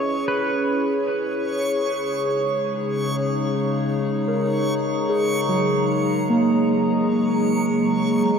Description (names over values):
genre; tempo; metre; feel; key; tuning
ambient; 75 BPM; 4/4; straight; unclear; A4 = 440 Hz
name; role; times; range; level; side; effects
pedal steel guitar; melody; 0.0-1.4 s; B4 to C#5; -29 LUFS; equal; shimmer reverb, diffuse ambient delay
warbly tape-like pad; sustained chords; 0.0-8.4 s; C#3 to A#5; -22 LUFS; left 1 dB; chorus, built-in reverb, shimmer reverb
backwards swelling texture; texture; 0.1-8.4 s; C#6; -32 LUFS; right 5 dB; built-in reverb, shimmer reverb
muted felt-like synth keys; arpeggios; 4.3-8.4 s; F#3 to A#4; -21 LUFS; right 2 dB; chorus, diffuse ambient delay
room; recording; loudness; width
wet concert hall reverb, RT60 2.3 s; none; -19 LUFS; side -6 dB against mid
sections
0.0-8.4 A section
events
fade-in on synth texture 0.0-8.4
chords
0.0 C#m7; 1.9 G#sus2/C#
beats
0.29 1.09 | 1.89 2.68 3.48 4.28 | 5.08 5.90 6.71 7.54 | 8.36